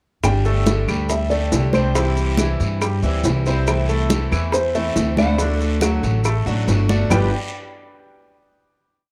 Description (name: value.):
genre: latin, Cuban son and guajira.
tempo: 140 BPM.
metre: 4/4.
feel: straight.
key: unclear.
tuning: A4 = 439 Hz.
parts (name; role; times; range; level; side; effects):
nylon-string guitar; melody; 0.2-7.3 s; C5 to G5; -27 LUFS; equal; cassette tape.
picked steel-string acoustic guitar; accompaniment; 0.2-7.3 s; G2 to G4; -28 LUFS; equal; cassette tape.
upright bass; bass; 0.2-7.3 s; G1 to G2; -22 LUFS; equal; tube saturation.
bongos; percussion; 0.2-7.2 s; none; -28 LUFS; equal; none.
claves; percussion; 0.2-7.2 s; none; -33 LUFS; equal; none.
congas; percussion; 0.2-7.2 s; none; -26 LUFS; equal; none.
guiro; percussion; 0.2-7.2 s; none; -37 LUFS; equal; none.
maracas; percussion; 0.2-7.2 s; none; -35 LUFS; equal; none.
bright grand piano; arpeggios; 0.5-7.3 s; C3 to G5; -29 LUFS; equal; cassette tape.
room: light reverb, small room ambience.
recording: home recording on cassette.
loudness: -19 LUFS.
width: mono.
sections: 0.2-7.1 verse; 7.1-8.8 final chord.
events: drum fill 6.9.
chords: 0.2 Gsus2; 2.0 C; 3.7 Am/C; 5.4 D; 7.1 G.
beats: | 0.24 0.67 1.10 1.53 | 1.96 2.39 2.82 3.25 | 3.68 4.11 4.54 4.97 | 5.40 5.83 6.26 6.68 | 7.11.